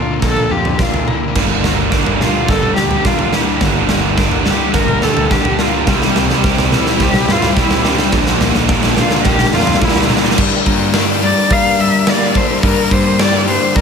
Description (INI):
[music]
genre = post-rock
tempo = 106 BPM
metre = 4/4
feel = straight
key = G dorian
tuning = A4 = 440 Hz
[part]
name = dark cello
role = melody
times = 0.0-13.8 s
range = D4 to F5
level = -19 LUFS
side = left 1 dB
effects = tape echo
[part]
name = evolving wavetable pad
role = sustained chords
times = 0.0-13.8 s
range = F4 to C6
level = -28 LUFS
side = right 2 dB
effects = none
[part]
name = twelve-string electric guitar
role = arpeggios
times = 0.0-13.8 s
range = G2 to G4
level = -23 LUFS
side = left 3 dB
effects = tape echo
[part]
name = overdriven semi-hollow guitar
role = riff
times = 0.0-13.8 s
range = G2 to D4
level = -21 LUFS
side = left 10 dB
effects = none
[part]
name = fuzz fingered electric bass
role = bass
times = 0.2-13.8 s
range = G1 to G3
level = -20 LUFS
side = right 1 dB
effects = overdrive
[part]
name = big rock drum kit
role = drums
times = 0.2-13.8 s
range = crash cymbal, hi-hat, kick drum, snare drum, toms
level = -15 LUFS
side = equal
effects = none
[part]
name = distorted electric guitar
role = riff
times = 1.4-10.4 s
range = G2 to G3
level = -19 LUFS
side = right 14 dB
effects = distortion
[sound]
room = light reverb, small room ambience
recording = none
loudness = -11 LUFS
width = side -6 dB against mid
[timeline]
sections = 0.0-10.4 A section; 10.4-13.8 B section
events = build-up 0.0-10.4; drum fill 0.0-10.4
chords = 0.0 Bb; 1.4 Gm; 5.9 C; 8.1 Bb; 10.4 Gm